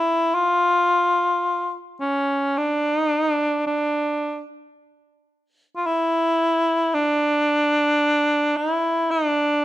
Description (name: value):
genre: caucasian folk, Caucasian lament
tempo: free time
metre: none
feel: none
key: D harmonic minor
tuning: A4 = 441 Hz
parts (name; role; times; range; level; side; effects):
- mellow cor anglais; solo; 0.0-9.6 s; C#4 to F4; -19 LUFS; equal; none
room: light reverb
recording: close, detailed microphones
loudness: -19 LUFS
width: side -14 dB against mid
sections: 0.0-9.6 A section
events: none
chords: none